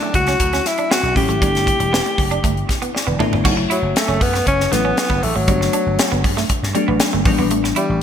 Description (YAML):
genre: polished 1980s jazz-funk pop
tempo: 118 BPM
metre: 4/4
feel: straight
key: unclear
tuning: A4 = 440 Hz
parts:
  - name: breathy alto saxophone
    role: melody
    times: 0.0-8.0 s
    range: F#3 to G4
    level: -20 LUFS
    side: left 1 dB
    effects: ping-pong delay
  - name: bell-like FM electric piano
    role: accompaniment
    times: 0.0-8.0 s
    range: E3 to D5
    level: -23 LUFS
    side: left 4 dB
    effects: lush chorus
  - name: electric guitar at the edge of break-up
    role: riff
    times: 0.0-7.8 s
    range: G3 to F#4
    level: -25 LUFS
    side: right 6 dB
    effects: analog chorus
  - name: vintage slap bass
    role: bass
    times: 0.1-8.0 s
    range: E1 to G2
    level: -22 LUFS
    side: equal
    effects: none
  - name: crisp fusion drum kit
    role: drums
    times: 0.1-7.9 s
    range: crash cymbal, hi-hat, kick drum, snare drum, toms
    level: -20 LUFS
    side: equal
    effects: gated reverb
room: light reverb, studio ambience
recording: bright 1980s-style digital production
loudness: -15 LUFS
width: side -8 dB against mid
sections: 0.0-3.5 A section; 3.5-8.0 B section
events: FM electric piano fill 2.7-3.5; drum fill 2.9-3.5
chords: 0.0 Dmaj9; 1.4 G69; 3.5 F#m7; 5.5 Gmaj9; 7.3 A9sus4